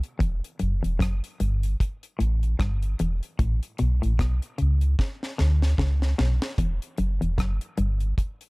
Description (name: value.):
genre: roots reggae.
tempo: 75 BPM.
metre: 4/4.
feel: swing 58% on 16ths.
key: E dorian.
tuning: A4 = 441 Hz.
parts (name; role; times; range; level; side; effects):
deep reggae drum kit; drums; 0.0-8.5 s; hi-hat, kick drum, rim click, snare drum; -27 LUFS; equal; none.
semi-hollow electric guitar; riff; 0.2-8.0 s; E2 to D3; -29 LUFS; left 2 dB; tremolo.
soft dub sub bass; bass; 0.2-8.1 s; E1 to D2; -23 LUFS; equal; none.
room: studio reverb.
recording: none.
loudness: -23 LUFS.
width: side -27 dB against mid.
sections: 0.0-6.6 A section; 6.6-8.5 B section.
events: drum fill 5.0-6.6.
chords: 0.2 Em; 3.4 A; 6.6 Em.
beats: | 0.20 1.00 1.80 2.60 | 3.40 4.19 4.99 5.79 | 6.59 7.38 8.18.